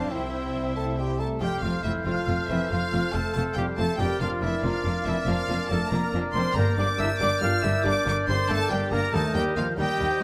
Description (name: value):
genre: cinematic, heroic adventure film score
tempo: 93 BPM (dotted quarters)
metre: 6/8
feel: straight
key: unclear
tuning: A4 = 438 Hz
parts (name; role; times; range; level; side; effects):
- clear symphonic violin section; melody; 0.0-10.2 s; E5 to F6; -35 LUFS; equal; none
- dark clarinet; second line; 0.0-10.2 s; A4 to C5; -39 LUFS; equal; none
- mellow hollow concert flute; second line; 0.0-10.2 s; G5 to G6; -37 LUFS; equal; none
- warm oboe; second line; 0.0-10.2 s; C5 to F5; -37 LUFS; equal; none
- warm symphonic violin section; second line; 0.0-10.2 s; Bb3 to F5; -41 LUFS; equal; none
- warm symphonic viola section; accompaniment; 0.0-10.2 s; D3 to E4; -39 LUFS; equal; none
- mellow French horn section; sustained chords; 0.0-10.2 s; E3 to F4; -36 LUFS; equal; none
- concert harp; arpeggios; 0.0-10.2 s; F2 to Bb5; -39 LUFS; equal; none
- warm trumpet; stabs; 0.0-10.2 s; C4 to F5; -34 LUFS; equal; none
- rich symphonic double bass section; bass; 0.0-10.1 s; F1 to Eb2; -34 LUFS; equal; none
- warm symphonic cello section; bass; 0.0-10.1 s; C2 to G2; -33 LUFS; equal; none
room: moderate scoring stage reverb, RT60 2.1 s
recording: close, detailed microphones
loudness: -26 LUFS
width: mono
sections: 0.0-1.4 A section; 1.4-10.2 B section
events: none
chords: 0.1 C; 1.4 F; 4.0 Bb/F; 6.6 Gm; 9.1 Eb